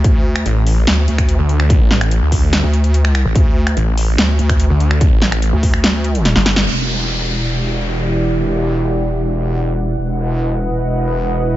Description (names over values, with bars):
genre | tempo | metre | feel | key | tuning
heavy wobble dubstep | 145 BPM | 4/4 | half-time | E minor | A4 = 440 Hz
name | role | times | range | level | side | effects
wobble bass | bass | 0.0-11.6 s | E1 to D2 | -16 LUFS | equal | chorus, overdrive
big-room dance drum kit | drums | 0.0-6.6 s | finger snaps, hi-hat, snare drum | -19 LUFS | equal | small room reverb
electronic kick drum | drums | 0.0-5.7 s | none | -14 LUFS | equal | small room reverb
snarling distorted saw bass | bass | 0.5-6.6 s | G1 to D2 | -14 LUFS | equal | distortion, overdrive
supersaw pad | sustained chords | 6.7-11.6 s | E3 to F#5 | -20 LUFS | right 1 dB | sidechain pumping, low-pass filter
downlifter | sound effects | 6.7-10.0 s | none | -25 LUFS | equal | none
room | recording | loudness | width
light reverb | nothing above 7.6 kHz | -13 LUFS | side -14 dB against mid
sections
0.0-6.7 A section; 6.7-11.6 B section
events
drop 0.0-6.7; drum fill 6.3-6.7; band accent 6.6; filter sweep on supersaw synth 6.7-11.6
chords
0.0 D5; 6.7 Em7; 10.0 B/E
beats
| 0.04 0.46 0.87 1.29 | 1.70 2.11 2.53 2.94 | 3.35 3.77 4.18 4.60 | 5.01 5.42 5.84 6.25 | 6.67 7.08 7.49 7.91 | 8.32 8.73 9.15 9.56 | 9.98 10.39 10.80 11.22